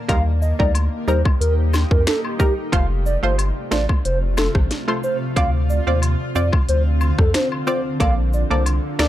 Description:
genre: dancehall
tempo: 91 BPM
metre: 4/4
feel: straight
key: F mixolydian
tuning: A4 = 440 Hz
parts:
  - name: analog pluck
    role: accompaniment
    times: 0.0-9.1 s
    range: G3 to D5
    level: -25 LUFS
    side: right 3 dB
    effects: chorus
  - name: granular cloud pad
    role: sustained chords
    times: 0.0-9.1 s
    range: C3 to A4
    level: -28 LUFS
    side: equal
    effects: built-in reverb, sidechain pumping
  - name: hollow clarinet-like synth lead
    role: melody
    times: 0.1-9.1 s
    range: G4 to F5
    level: -24 LUFS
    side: equal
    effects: chorus, ping-pong delay
  - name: saturated sub bass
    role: bass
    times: 0.1-9.1 s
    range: F1 to F2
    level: -19 LUFS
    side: equal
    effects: none
  - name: island pop drum kit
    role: drums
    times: 0.1-9.1 s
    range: finger snaps, hi-hat, kick drum, rim click, snare drum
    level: -19 LUFS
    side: equal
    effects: overdrive
  - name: woodblock and cabasa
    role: percussion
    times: 0.1-9.1 s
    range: none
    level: -31 LUFS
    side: left 6 dB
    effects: none
room: digital ambience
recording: dark, warm production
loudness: -17 LUFS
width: side -13 dB against mid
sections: 0.0-9.1 A section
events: none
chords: 0.1 Eb; 2.7 F; 5.4 Dm7; 8.0 Bbmaj7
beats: | 0.09 0.75 1.41 2.07 | 2.73 3.39 4.05 4.71 | 5.37 6.03 6.68 7.34 | 8.00 8.66

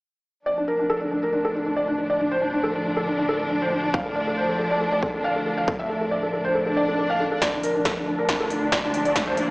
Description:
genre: heavy wobble dubstep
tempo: 138 BPM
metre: 4/4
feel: half-time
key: D minor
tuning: A4 = 440 Hz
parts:
  - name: felt-muted upright piano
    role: melody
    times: 0.5-9.4 s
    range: D4 to F5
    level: -23 LUFS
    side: equal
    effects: dub echo
  - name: warm symphonic string section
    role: sustained chords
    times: 0.5-9.5 s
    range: D2 to D4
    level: -27 LUFS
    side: equal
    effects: sidechain pumping, low-pass filter
  - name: electronic kick drum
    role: drums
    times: 3.9-9.2 s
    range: none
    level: -29 LUFS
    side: equal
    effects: none
  - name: swell and riser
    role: sound effects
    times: 6.7-9.5 s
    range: none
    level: -29 LUFS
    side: equal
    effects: none
  - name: big-room dance drum kit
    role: drums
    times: 7.4-9.5 s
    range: hi-hat, snare drum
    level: -26 LUFS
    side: equal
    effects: high-pass filter on snare, high-pass filter on hats, high-pass filter on room
room: wet digital room reverb, RT60 1.2 s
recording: played on a big sound system in a bare room, large studio reverb, small speaker sound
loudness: -21 LUFS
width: side -25 dB against mid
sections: 0.5-7.4 A section; 7.4-9.5 B section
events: kick drops out 6.5-7.4; swell 6.7-7.4; build-up 7.4-9.5; drum fill 7.4-9.5; filter sweep on string section 7.4-9.5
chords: 0.5 Dm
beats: | 0.46 0.90 1.33 1.76 | 2.20 2.63 3.07 3.50 | 3.94 4.37 4.81 5.24 | 5.68 6.11 6.55 6.98 | 7.42 7.85 8.29 8.72 | 9.16

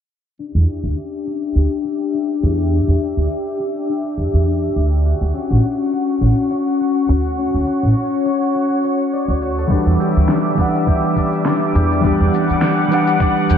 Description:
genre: sunset chillout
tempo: 103 BPM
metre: 4/4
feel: swing 55% on 16ths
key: E dorian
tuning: A4 = 441 Hz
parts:
  - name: lush unison pad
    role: sustained chords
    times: 0.4-13.6 s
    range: G3 to D6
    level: -23 LUFS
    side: right 1 dB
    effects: chorus, shimmer reverb
  - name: concert harp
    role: arpeggios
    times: 0.4-13.6 s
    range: C#4 to D5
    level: -20 LUFS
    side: left 4 dB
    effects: low-pass filter, digital delay, shimmer reverb
  - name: electronic shaker and snare drum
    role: drums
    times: 0.4-13.6 s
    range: none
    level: -24 LUFS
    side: right 1 dB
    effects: overdrive, gated reverb
  - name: upright bass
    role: bass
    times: 0.5-13.6 s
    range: A1 to E2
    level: -16 LUFS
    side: right 1 dB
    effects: tube saturation
  - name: hollow-body jazz guitar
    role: accompaniment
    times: 9.7-13.6 s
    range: E3 to F#5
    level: -18 LUFS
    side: right 1 dB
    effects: auto-pan, digital delay, shimmer reverb
  - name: electronic kick drum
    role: drums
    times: 9.7-13.3 s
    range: none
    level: -18 LUFS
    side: right 1 dB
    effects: none
room: moderate plate reverb, RT60 2.5 s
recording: bright 1980s-style digital production, low-pass filter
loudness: -15 LUFS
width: side -8 dB against mid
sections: 0.4-13.6 A section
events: filter sweep on upright bass 0.4-13.6; filter sweep on harp 0.4-13.6; filter sweep 0.4-13.6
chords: 0.4 Em7; 5.0 Dmaj7; 9.7 Em7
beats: | 0.39 0.97 1.55 2.14 | 2.72 3.30 3.88 4.47 | 5.05 5.63 6.21 6.80 | 7.38 7.96 8.54 9.13 | 9.71 10.29 10.87 11.46 | 12.04 12.62 13.20

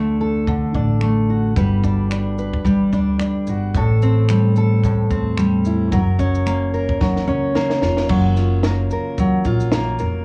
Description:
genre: acoustic pop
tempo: 110 BPM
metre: 4/4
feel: swing 55% on 16ths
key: unclear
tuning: A4 = 440 Hz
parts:
  - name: fingerpicked steel-string acoustic guitar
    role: accompaniment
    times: 0.0-10.2 s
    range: A2 to B4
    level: -21 LUFS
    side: equal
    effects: none
  - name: upright bass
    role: bass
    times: 0.0-10.2 s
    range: E#1 to E2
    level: -23 LUFS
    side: equal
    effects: none
  - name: compact cocktail drum kit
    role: drums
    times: 0.5-10.1 s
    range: crash cymbal, finger snaps, kick drum, shaker, snare drum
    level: -26 LUFS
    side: equal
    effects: none
room: light reverb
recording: worn, warbling old tape, cassette tape, warbly pitch drift, small room reverb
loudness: -18 LUFS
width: mono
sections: 0.0-8.1 A section; 8.1-10.2 B section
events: drum fill 7.0-8.1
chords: 0.0 D; 1.6 Gmaj7; 3.7 Am7; 5.9 F#maj7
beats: 0.47 1.02 | 1.56 2.11 2.65 3.20 | 3.74 4.29 4.83 5.38 | 5.92 6.46 7.01 7.55 | 8.10 8.64 9.18 9.72

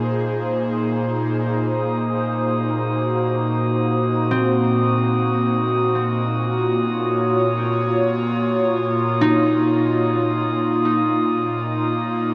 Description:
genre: ambient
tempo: free time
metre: none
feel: none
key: unclear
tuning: A4 = 440 Hz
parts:
  - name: airy breathy pad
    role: sustained chords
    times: 0.0-12.3 s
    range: Bb2 to Db5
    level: -22 LUFS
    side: equal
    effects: chorus, shimmer reverb
  - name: glass harmonica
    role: texture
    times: 1.6-12.3 s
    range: Eb6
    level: -28 LUFS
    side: equal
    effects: shimmer reverb
  - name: concert harp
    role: arpeggios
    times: 4.3-11.9 s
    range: C4 to Eb4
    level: -26 LUFS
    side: equal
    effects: tape echo, shimmer reverb
room: wet huge ambient reverb, RT60 7.7 s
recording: worn, warbling old tape, cassette tape, warbly pitch drift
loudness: -20 LUFS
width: mono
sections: 0.0-1.6 A section; 1.6-12.3 B section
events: none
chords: 0.0 Bb9sus4; 1.6 Ab7/Bb; 6.0 Ebm7/Bb; 10.3 Bbsus4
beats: free time

